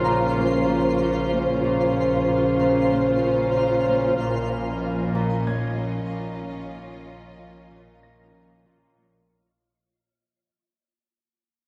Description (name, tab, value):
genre	cinematic, suspense film score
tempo	94 BPM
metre	4/4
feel	straight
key	unclear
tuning	A4 = 440 Hz
part	dark studio violin section	melody	0.0-9.1 s	C5 to Eb5	-37 LUFS	equal	none
part	dark studio violin section	second line	0.0-9.1 s	F4	-38 LUFS	equal	none
part	warm chamber viola section	accompaniment	0.0-9.1 s	Db4	-33 LUFS	equal	none
part	mellow French horn section	sustained chords	0.0-8.9 s	Db3 to C5	-26 LUFS	equal	none
part	twinkling granular texture	sustained chords	0.0-9.3 s	F4 to F5	-33 LUFS	equal	built-in reverb
part	Celtic harp	riff	0.0-9.3 s	Bb2 to Bb3	-32 LUFS	equal	none
part	warm studio cello section	bass	0.0-9.1 s	Bb2	-35 LUFS	equal	none
part	warm studio double bass section	bass	0.0-9.1 s	Bb1	-32 LUFS	equal	none
part	clear baby grand piano	texture	0.0-9.3 s	Bb4 to Bb6	-34 LUFS	equal	none
part	warm studio violin section	texture	4.2-8.9 s	Ab5 to Cb6	-48 LUFS	equal	none
room	wet scoring stage reverb, RT60 1.7 s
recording	heard from further back in the room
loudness	-22 LUFS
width	mono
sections	0.0-9.3 A section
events	fade-out 0.0-9.3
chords	0.0 Bbmadd9; 4.2 Dbadd9/Bb